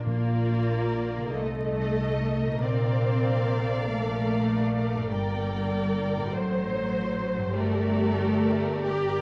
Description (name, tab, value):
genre	classical, slow romantic movement for symphony orchestra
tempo	48 BPM (dotted quarters)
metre	6/8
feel	uneven beats, rubato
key	Bb major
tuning	A4 = 440 Hz
part	concert harp	arpeggios	0.0-9.2 s	G2 to F5	-35 LUFS	equal	none
part	rich symphonic cello section	bass	0.0-9.2 s	F#3 to G4	-31 LUFS	equal	transformer saturation
part	warm symphonic violin section	melody	0.1-9.2 s	C5 to G5	-41 LUFS	equal	none
part	rich symphonic violin section	second line	0.1-9.2 s	Bb4 to Eb5	-38 LUFS	equal	none
part	warm symphonic viola section	accompaniment	0.1-9.2 s	F4 to C5	-35 LUFS	equal	none
part	warm symphonic double bass section	bass	0.1-9.2 s	G1 to C2	-33 LUFS	equal	transformer saturation
part	timpani	percussion	0.1-1.3 s	Bb2	-34 LUFS	equal	none
room	wet scoring stage reverb, RT60 1.9 s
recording	worn, warbling old tape, cassette tape, vinyl crackle, warbly pitch drift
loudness	-27 LUFS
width	mono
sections	0.1-9.2 A section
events	none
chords	0.1 Bb; 1.4 Adim/C; 2.6 Bb; 5.1 Gm; 6.3 F#dim/A; 7.6 Gm